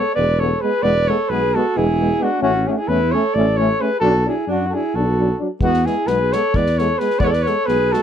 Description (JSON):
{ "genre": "balkan folk, Balkan brass band", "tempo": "263 BPM (eighths)", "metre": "7/8", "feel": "straight", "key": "E mixolydian", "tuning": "A4 = 438 Hz", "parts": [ { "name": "mellow flugelhorn", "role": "melody", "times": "0.0-8.0 s", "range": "F#4 to D5", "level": "-19 LUFS", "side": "left 3 dB", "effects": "none" }, { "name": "dark alto saxophone", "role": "second line", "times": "0.0-8.0 s", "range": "B3 to B4", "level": "-23 LUFS", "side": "right 11 dB", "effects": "none" }, { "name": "mellow euphonium", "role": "accompaniment", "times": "0.0-8.0 s", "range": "F#3 to A3", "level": "-26 LUFS", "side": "right 5 dB", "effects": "none" }, { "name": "mellow trombone", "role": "accompaniment", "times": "0.0-8.0 s", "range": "B3 to D4", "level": "-25 LUFS", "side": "left 7 dB", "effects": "none" }, { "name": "dark tuba", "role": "bass", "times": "0.2-7.9 s", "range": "E1 to F#2", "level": "-21 LUFS", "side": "left 1 dB", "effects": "none" }, { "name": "unplugged drum kit", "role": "percussion", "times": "5.6-8.0 s", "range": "kick drum, snare drum", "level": "-24 LUFS", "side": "left 1 dB", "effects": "none" } ], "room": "small room ambience", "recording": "dry, close 1970s-style studio recording", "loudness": "-16 LUFS", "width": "side -9 dB against mid", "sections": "0.0-8.0 A section", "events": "none", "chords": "0.0 E; 2.4 A; 4.0 Bm; 5.6 E" }